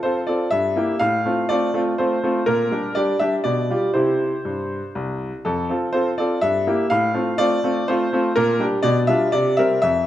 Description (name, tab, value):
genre	classical-period piano sonatina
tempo	123 BPM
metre	3/4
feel	rubato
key	F major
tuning	A4 = 439 Hz
part	bright grand piano	solo	0.0-10.1 s	C2 to F5	-18 LUFS	equal	none
room	wet recital hall reverb, RT60 1.7 s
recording	none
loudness	-18 LUFS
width	side -12 dB against mid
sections	0.0-10.1 A section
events	none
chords	0.0 F; 0.5 Edim/G; 1.0 F/A; 2.5 Gm/Bb; 3.4 G7/B; 3.9 C; 5.5 F; 6.4 Edim/G; 6.9 F/A; 8.4 Gm/Bb; 8.8 G7/B; 9.3 C7